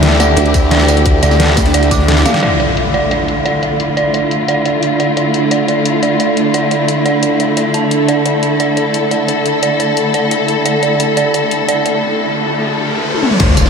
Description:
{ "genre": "dark technical drum and bass", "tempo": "175 BPM", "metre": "4/4", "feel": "straight", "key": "D minor", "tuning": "A4 = 439 Hz", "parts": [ { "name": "warm studio string section", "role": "sustained chords", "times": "0.0-13.7 s", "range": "D3 to A4", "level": "-16 LUFS", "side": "left 1 dB", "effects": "sidechain pumping, low-pass filter" }, { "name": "snarling distorted saw bass", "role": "bass", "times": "0.0-2.2, 13.4-13.7 s", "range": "E1 to D2", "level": "-13 LUFS", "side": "left 1 dB", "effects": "distortion, overdrive" }, { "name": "crunchy breakbeat drum kit", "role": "drums", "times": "0.0-2.4, 13.4-13.7 s", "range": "ride cymbal, snare drum", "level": "-30 LUFS", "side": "left 1 dB", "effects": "none" }, { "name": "dubstep drum kit", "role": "drums", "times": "0.0-13.7 s", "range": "crash cymbal, hi-hat, snare drum, tambourine, toms", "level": "-19 LUFS", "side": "left 1 dB", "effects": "low-pass filter on hats, low-pass filter on perc, low-pass filter on snare, low-pass filter on toms, low-pass filter on cymbals, low-pass filter on room" }, { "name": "deep dark ambient pad", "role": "texture", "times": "0.0-12.0 s", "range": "D4 to G5", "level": "-20 LUFS", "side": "right 5 dB", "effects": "chorus, built-in reverb, sidechain pumping" }, { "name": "dark detuned synth bell", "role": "arpeggios", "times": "0.2-11.9 s", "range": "D5 to D6", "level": "-17 LUFS", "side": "right 2 dB", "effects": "chorus, sidechain pumping, diffuse ambient delay" }, { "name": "formant-sweep wobble bass", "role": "bass", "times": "0.4-1.2 s", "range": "D2", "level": "-14 LUFS", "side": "equal", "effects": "chorus" }, { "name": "electronic kick drum", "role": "drums", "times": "0.5-2.0, 13.4-13.6 s", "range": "none", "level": "-14 LUFS", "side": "left 1 dB", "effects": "none" }, { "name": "impact and riser", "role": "sound effects", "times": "2.4-3.8, 11.8-13.7 s", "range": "none", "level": "-21 LUFS", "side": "left 1 dB", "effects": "none" } ], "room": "wet huge ambient reverb, RT60 7.6 s", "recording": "dreamy mix soaked in reverb", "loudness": "-11 LUFS", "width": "side -6 dB against mid", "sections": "0.0-2.4 A section; 2.4-13.4 B section", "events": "drop 0.0-2.4; drum fill 2.2, 13.1; band accent 2.3; impact 2.4-3.8, 13.4; filter sweep on string section 2.4-13.4; riser 11.8-13.4; break 12.0-13.4", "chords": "0.0 Dsus2; 2.4 Dmadd9", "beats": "0.03 0.37 0.71 | 1.06 1.40 1.74 2.08 | 2.43 2.77 3.11 3.46 | 3.80 4.14 4.48 4.83 | 5.17 5.51 5.86 6.20 | 6.54 6.88 7.23 7.57 | 7.91 8.26 8.60 8.94 | 9.28 9.63 9.97 10.31 | 10.66 11.00 11.34 11.68 | 12.03 12.37 12.71 13.06 | 13.40" }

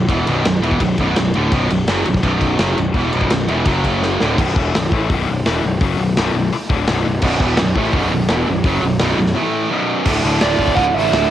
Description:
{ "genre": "heavy metal", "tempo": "168 BPM", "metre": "4/4", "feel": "straight", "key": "B minor", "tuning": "A4 = 436 Hz", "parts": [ { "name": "heavy high-gain guitar", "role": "riff", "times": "0.0-11.3 s", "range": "B1 to A3", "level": "-21 LUFS", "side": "left 7 dB", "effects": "distortion, cassette tape" }, { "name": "tight distorted guitar", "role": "riff", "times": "0.0-4.4, 7.2-11.3 s", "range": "B1 to A3", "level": "-19 LUFS", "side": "right 5 dB", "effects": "distortion, cassette tape" }, { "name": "fuzz picked electric bass", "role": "bass", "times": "0.0-11.3 s", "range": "B0 to A1", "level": "-20 LUFS", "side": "equal", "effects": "overdrive" }, { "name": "big rock drum kit", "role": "drums", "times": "0.1-11.2 s", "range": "crash cymbal, hi-hat, kick drum, ride cymbal, snare drum", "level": "-20 LUFS", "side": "equal", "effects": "cassette tape" }, { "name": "bluesy overdriven lead guitar", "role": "melody", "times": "10.4-11.3 s", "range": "D5 to F#5", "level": "-17 LUFS", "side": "right 7 dB", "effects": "distortion" } ], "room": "light reverb, studio reverb", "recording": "home recording on cassette", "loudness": "-14 LUFS", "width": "side -12 dB against mid", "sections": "0.0-4.4 A section; 4.4-10.1 B section; 10.1-11.3 C section", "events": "drum fill 4.0-4.4; break 9.4-10.1", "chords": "0.0 Bm; 3.7 F#5; 4.2 D5; 4.4 B5; 9.4 A5; 9.7 B5; 10.1 D5", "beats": "| 0.09 0.45 0.80 1.16 | 1.52 1.88 2.24 2.60 | 2.95 3.31 3.67 4.03 | 4.38 4.74 5.10 5.45 | 5.81 6.17 6.52 6.88 | 7.23 7.59 7.94 8.30 | 8.65 9.01 9.36 9.72 | 10.07 10.42 10.78 11.13" }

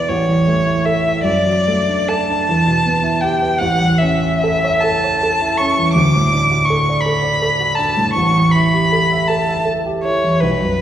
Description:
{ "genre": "classical, romantic duo for violin and grand piano", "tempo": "47-56 BPM (dotted quarters)", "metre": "6/8", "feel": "rubato", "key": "unclear", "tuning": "A4 = 440 Hz", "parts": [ { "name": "rich violin", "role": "melody", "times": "0.0-10.8 s", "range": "B4 to D6", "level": "-16 LUFS", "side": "left 1 dB", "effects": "none" }, { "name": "warm baby grand piano", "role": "accompaniment", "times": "0.0-10.8 s", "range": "A1 to E5", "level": "-16 LUFS", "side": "right 1 dB", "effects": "none" } ], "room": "wet recital hall reverb, RT60 1.5 s", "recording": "heard from further back in the room, vinyl crackle", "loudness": "-13 LUFS", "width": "side -10 dB against mid", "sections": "0.0-10.8 A section", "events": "none", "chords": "0.1 A; 1.3 D/F#; 2.5 Em; 3.6 A; 6.0 D; 8.2 A5", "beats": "0.10 | 1.27 2.48 | 3.60 4.83 | 5.96 7.04 | 8.15 9.29 | 10.42" }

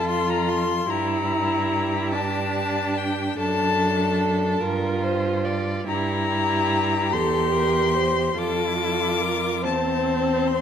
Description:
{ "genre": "classical, slow romantic movement for string quartet", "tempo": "48 BPM (dotted quarters)", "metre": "6/8", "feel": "rubato", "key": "F major", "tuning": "A4 = 440 Hz", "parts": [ { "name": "rich violin", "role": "melody", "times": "0.0-10.6 s", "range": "G5 to D6", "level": "-25 LUFS", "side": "left 6 dB", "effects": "none" }, { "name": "dark violin", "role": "second line", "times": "0.0-10.6 s", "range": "G4 to D5", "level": "-27 LUFS", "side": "left 3 dB", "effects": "none" }, { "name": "rich viola", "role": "accompaniment", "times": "0.0-10.6 s", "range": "C4 to G4", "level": "-26 LUFS", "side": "right 2 dB", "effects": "none" }, { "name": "rich cello", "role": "bass", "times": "0.0-10.6 s", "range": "E2 to G2", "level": "-27 LUFS", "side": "right 4 dB", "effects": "none" } ], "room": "wet recital hall reverb, RT60 1.3 s", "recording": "none", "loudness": "-20 LUFS", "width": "side -8 dB against mid", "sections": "0.0-10.6 A section", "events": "none", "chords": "0.0 F; 0.9 Gm; 3.4 D/F#; 4.6 Gm7; 5.9 C7/G; 8.4 F", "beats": "| 0.89 2.13 | 3.39 4.62 | 5.88 7.12 | 8.36 9.63" }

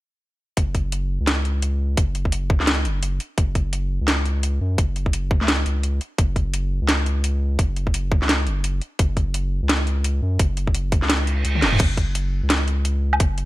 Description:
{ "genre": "half-time drum and bass", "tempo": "171 BPM", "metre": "4/4", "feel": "swing 59% on 16ths, half-time", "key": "unclear", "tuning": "A4 = 440 Hz", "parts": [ { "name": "saturated sub bass", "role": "bass", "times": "0.6-13.5 s", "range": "E1 to F#2", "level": "-22 LUFS", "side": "equal", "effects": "none" }, { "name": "drum and bass drum kit", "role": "drums", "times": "0.6-13.5 s", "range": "crash cymbal, hi-hat, snare drum, toms, woodblock", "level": "-22 LUFS", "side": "equal", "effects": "none" }, { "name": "electronic kick drum", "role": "drums", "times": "0.6-13.3 s", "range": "none", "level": "-20 LUFS", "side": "equal", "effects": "none" }, { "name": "reverse cymbal", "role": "sound effects", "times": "11.2-11.8 s", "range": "none", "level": "-26 LUFS", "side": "right 3 dB", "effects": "none" } ], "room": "little or no reverb", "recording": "none", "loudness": "-19 LUFS", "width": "side -17 dB against mid", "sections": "0.6-13.5 A section", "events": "reverse cymbal 11.2-11.8; drum fill 11.5", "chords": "none", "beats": "| 0.57 0.92 1.27 1.62 | 1.98 2.33 2.68 3.03 | 3.38 3.73 4.08 4.43 | 4.78 5.13 5.48 5.83 | 6.19 6.54 6.89 7.24 | 7.59 7.94 8.29 8.64 | 8.99 9.34 9.70 10.05 | 10.40 10.75 11.10 11.45 | 11.80 12.15 12.50 12.85 | 13.20" }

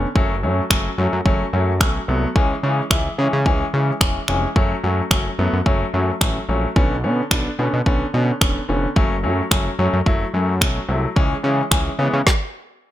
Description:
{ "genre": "dance-pop", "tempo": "109 BPM", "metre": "4/4", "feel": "straight", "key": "F# minor", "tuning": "A4 = 440 Hz", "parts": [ { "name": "warm baby grand piano", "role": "accompaniment", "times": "0.0-12.2 s", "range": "D3 to E4", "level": "-22 LUFS", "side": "left 1 dB", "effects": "sidechain pumping" }, { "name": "fat analog bass", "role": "bass", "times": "0.0-12.2 s", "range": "E1 to C#3", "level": "-21 LUFS", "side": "equal", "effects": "sidechain pumping" }, { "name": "deep house drum kit", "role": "drums", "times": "0.2-12.4 s", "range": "finger snaps, kick drum, snare drum", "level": "-18 LUFS", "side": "equal", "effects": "none" } ], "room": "little or no reverb", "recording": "none", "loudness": "-17 LUFS", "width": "side -13 dB against mid", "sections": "0.0-12.9 A section", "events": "stop 12.3-12.9", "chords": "0.2 F#m; 2.4 C#m; 4.6 F#m; 6.8 Bmadd9; 9.0 F#m; 11.2 C#m", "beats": "| 0.16 0.71 1.26 1.81 | 2.36 2.91 3.46 4.01 | 4.56 5.11 5.66 6.21 | 6.76 7.31 7.86 8.41 | 8.96 9.51 10.06 10.62 | 11.16 11.72 12.27" }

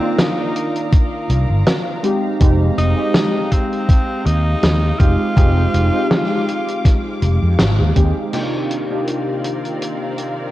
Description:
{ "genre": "vaporwave", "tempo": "81 BPM", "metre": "4/4", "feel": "swing 55% on 16ths", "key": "F dorian", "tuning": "A4 = 437 Hz", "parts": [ { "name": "raspy tenor saxophone", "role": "melody", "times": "0.0-7.6 s", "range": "C4 to F4", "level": "-24 LUFS", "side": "equal", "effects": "tape echo" }, { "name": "warbly lo-fi synth keys", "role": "accompaniment", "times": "0.0-10.5 s", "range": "C3 to D5", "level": "-21 LUFS", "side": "equal", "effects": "wide subtle chorus, vintage 12-bit sampler grit, tape echo" }, { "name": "rich symphonic string section", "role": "sustained chords", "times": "0.0-10.5 s", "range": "Eb3 to D6", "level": "-29 LUFS", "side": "left 1 dB", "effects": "none" }, { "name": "warm soul drum kit", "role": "drums", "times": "0.2-10.3 s", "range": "crash cymbal, hi-hat, snare drum", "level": "-20 LUFS", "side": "equal", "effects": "gated reverb" }, { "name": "electronic kick drum", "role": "drums", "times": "0.9-8.1 s", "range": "none", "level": "-13 LUFS", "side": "equal", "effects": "none" }, { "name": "mellow fretless electric bass", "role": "bass", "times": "1.3-8.1 s", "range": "F1 to F2", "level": "-16 LUFS", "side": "equal", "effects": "none" } ], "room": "light reverb, studio reverb", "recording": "cassette tape", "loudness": "-14 LUFS", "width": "side -15 dB against mid", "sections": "0.0-8.3 A section; 8.3-10.5 B section", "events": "band accent 7.6-8.0", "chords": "0.0 Cm11 (rootless); 2.0 Fm7; 8.3 Cm11", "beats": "0.18 0.93 1.67 | 2.41 3.15 3.89 4.63 | 5.37 6.11 6.85 7.59 | 8.33 9.07 9.81" }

